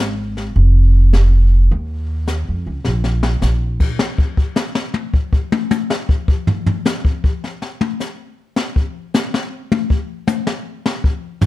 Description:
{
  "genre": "jazz piano trio",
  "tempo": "105 BPM",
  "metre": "4/4",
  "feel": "swing 67% on 8ths",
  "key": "unclear",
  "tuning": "A4 = 440 Hz",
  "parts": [
    { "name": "upright bass", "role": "bass", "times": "0.0-4.0 s", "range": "F1 to F2", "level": "-14 LUFS", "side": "equal", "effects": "none" },
    { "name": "jazz brush drum kit", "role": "drums", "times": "0.4-11.5 s", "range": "brushed snare drum, crash cymbal, hi-hat, kick drum, snare drum, toms", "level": "-17 LUFS", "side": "left 2 dB", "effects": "none" }
  ],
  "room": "little or no reverb",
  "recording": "none",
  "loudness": "-15 LUFS",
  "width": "side -16 dB against mid",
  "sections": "0.0-4.0 A section; 4.0-11.5 B section",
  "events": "drum fill 2.9-3.4; drum solo 4.0-11.5",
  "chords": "none",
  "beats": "0.56 1.14 | 1.71 2.28 2.86 3.43 | 4.00 4.58 5.15 5.72 | 6.29 6.86 7.43 8.01 | 8.58 9.15 9.72 10.29 | 10.86 11.43"
}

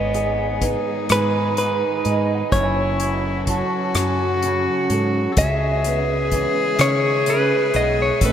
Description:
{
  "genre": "acoustic folk-pop ballad",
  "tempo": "42 BPM (dotted quarters)",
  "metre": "6/8",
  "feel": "straight",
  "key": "unclear",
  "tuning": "A4 = 440 Hz",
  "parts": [
    { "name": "direct-recorded clean electric guitar", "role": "melody", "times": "0.0-8.3 s", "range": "B4 to E5", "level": "-22 LUFS", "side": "right 1 dB", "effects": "harmonic tremolo" },
    { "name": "warm cello", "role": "second line", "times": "0.0-8.3 s", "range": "B3 to A4", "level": "-23 LUFS", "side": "left 3 dB", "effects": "none" },
    { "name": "fingerpicked steel-string acoustic guitar", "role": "accompaniment", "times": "0.0-8.3 s", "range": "F#2 to A4", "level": "-26 LUFS", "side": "right 4 dB", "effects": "none" },
    { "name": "warm symphonic string section", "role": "sustained chords", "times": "0.0-8.3 s", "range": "C3 to E5", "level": "-32 LUFS", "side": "equal", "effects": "none" },
    { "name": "woody fretless electric bass", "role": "bass", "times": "0.0-8.3 s", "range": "F#1 to C#3", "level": "-24 LUFS", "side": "equal", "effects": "none" },
    { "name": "electric guitar through a small old amp", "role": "arpeggios", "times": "0.1-5.1 s", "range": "G#4 to A5", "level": "-31 LUFS", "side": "right 3 dB", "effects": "tremolo" },
    { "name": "unplugged drum kit", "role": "drums", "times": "0.1-8.3 s", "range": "hi-hat, kick drum, rim click", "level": "-24 LUFS", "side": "left 1 dB", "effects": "none" }
  ],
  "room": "wet cathedral reverb, RT60 5.9 s",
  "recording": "in a vast, echoing space",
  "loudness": "-17 LUFS",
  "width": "side -9 dB against mid",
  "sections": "0.0-8.3 A section",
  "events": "none",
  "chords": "0.0 G#m; 2.5 F#m; 5.4 C#m7",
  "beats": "1.10 | 2.53 3.95 | 5.37 6.80 | 8.22"
}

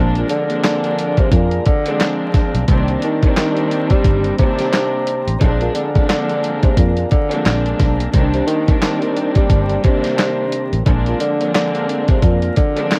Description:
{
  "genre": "hip hop, boom-bap hip-hop",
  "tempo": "88 BPM",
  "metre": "4/4",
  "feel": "swing 59% on 16ths",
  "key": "unclear",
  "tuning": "A4 = 441 Hz",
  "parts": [
    { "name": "warm studio string section", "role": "accompaniment", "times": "0.0-13.0 s", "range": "Eb3 to D4", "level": "-24 LUFS", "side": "equal", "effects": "cassette tape, high-pass filter, low-pass filter, plate reverb" },
    { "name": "mellow tonewheel organ", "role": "sustained chords", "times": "0.0-13.0 s", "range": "C4 to Bb5", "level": "-31 LUFS", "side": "equal", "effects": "slow rotary speaker, high-pass filter, low-pass filter, cassette tape, plate reverb" },
    { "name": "fingered electric bass", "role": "bass", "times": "0.0-12.5 s", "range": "G1 to F2", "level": "-21 LUFS", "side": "equal", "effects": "none" },
    { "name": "breathy tenor saxophone", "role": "melody", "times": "0.2-13.0 s", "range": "Bb2 to G3", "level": "-22 LUFS", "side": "equal", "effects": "high-pass filter, low-pass filter, cassette tape, tape echo, plate reverb" },
    { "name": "dusty soul sampler-style drum kit", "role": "drums", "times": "0.2-13.0 s", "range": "handclaps, hi-hat, kick drum, snare drum", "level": "-18 LUFS", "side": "equal", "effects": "none" }
  ],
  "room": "light reverb",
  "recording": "home recording on cassette, vinyl crackle",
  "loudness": "-16 LUFS",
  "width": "mono",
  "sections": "0.0-13.0 A section",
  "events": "none",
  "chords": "0.0 Bb7; 2.7 Cm7; 5.4 Bb7; 8.1 Cm7; 10.9 Bb7",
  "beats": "0.64 1.32 2.00 | 2.68 3.36 4.05 4.73 | 5.41 6.09 6.77 7.46 | 8.14 8.82 9.50 10.18 | 10.86 11.55 12.23 12.91"
}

